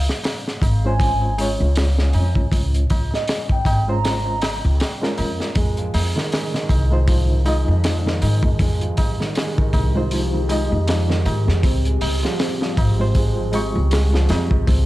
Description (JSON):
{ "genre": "trip hop", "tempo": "79 BPM", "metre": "4/4", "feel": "swing 57% on 16ths", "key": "unclear", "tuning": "A4 = 440 Hz", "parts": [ { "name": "pure breathy sine lead", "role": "melody", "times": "0.0-4.6 s", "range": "Eb5 to Bb5", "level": "-28 LUFS", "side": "right 1 dB", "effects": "lush chorus, cassette tape, dub echo" }, { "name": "upright bass", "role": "bass", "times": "0.0-14.9 s", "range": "Ab1 to Ab2", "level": "-19 LUFS", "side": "equal", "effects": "tube saturation" }, { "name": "crunchy breakbeat drum kit", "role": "drums", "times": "0.1-14.9 s", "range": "hi-hat, kick drum, snare drum", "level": "-22 LUFS", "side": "equal", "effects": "none" }, { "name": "tabla", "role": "percussion", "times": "0.1-14.8 s", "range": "none", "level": "-33 LUFS", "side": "right 1 dB", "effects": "none" }, { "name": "barky reed electric piano", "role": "accompaniment", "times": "0.8-14.9 s", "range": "Ab3 to Db6", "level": "-27 LUFS", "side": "equal", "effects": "overdrive, fast tremolo, harmonic tremolo, vintage 12-bit sampler grit, tape echo" }, { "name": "deep dark ambient pad", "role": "sustained chords", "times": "9.1-14.9 s", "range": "G4", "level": "-31 LUFS", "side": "right 1 dB", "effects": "chorus, built-in reverb" }, { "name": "felt-muted upright piano", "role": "arpeggios", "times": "5.6-14.9 s", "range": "Eb3 to C4", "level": "-26 LUFS", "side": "right 1 dB", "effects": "vintage 12-bit sampler grit, tape echo" } ], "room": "studio reverb", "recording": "dark, warm production", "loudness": "-17 LUFS", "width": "side -17 dB against mid", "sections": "0.0-14.9 A section", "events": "none", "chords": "0.0 Dbmaj7; 5.6 Fm7; 11.6 Dbmaj7", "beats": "0.24 1.00 1.76 | 2.52 3.28 4.04 4.80 | 5.56 6.32 7.08 7.84 | 8.60 9.36 10.12 10.88 | 11.64 12.40 13.16 13.91 | 14.68" }